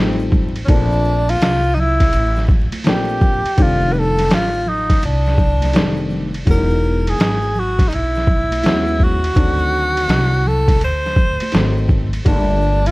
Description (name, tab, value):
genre	hip hop, jazz-hop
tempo	83 BPM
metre	4/4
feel	swing 65% on 16ths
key	unclear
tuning	A4 = 440 Hz
part	breathy tenor saxophone	melody	0.0-12.9 s	C4 to C5	-19 LUFS	equal	none
part	dark grand piano	accompaniment	0.0-12.9 s	D3 to E4	-22 LUFS	left 2 dB	none
part	upright bass	bass	0.0-12.9 s	E1 to D#2	-19 LUFS	equal	none
part	egg shaker and congas	percussion	0.2-12.9 s	none	-29 LUFS	right 2 dB	none
part	trip hop sampler-style drum kit	drums	0.3-12.9 s	hi-hat, kick drum, ride cymbal, snare drum	-18 LUFS	equal	none
room	little or no reverb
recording	dark, warm production, vinyl crackle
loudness	-14 LUFS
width	side -21 dB against mid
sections	0.0-12.9 A section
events	none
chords	0.0 F9; 0.7 Bbmaj9; 3.6 F13; 6.5 Emaj7; 9.4 D7b9; 12.3 Gmadd9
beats	| 0.69 1.41 2.13 2.86 | 3.58 4.30 5.03 5.75 | 6.47 7.19 7.92 8.64 | 9.36 10.09 10.81 11.53 | 12.26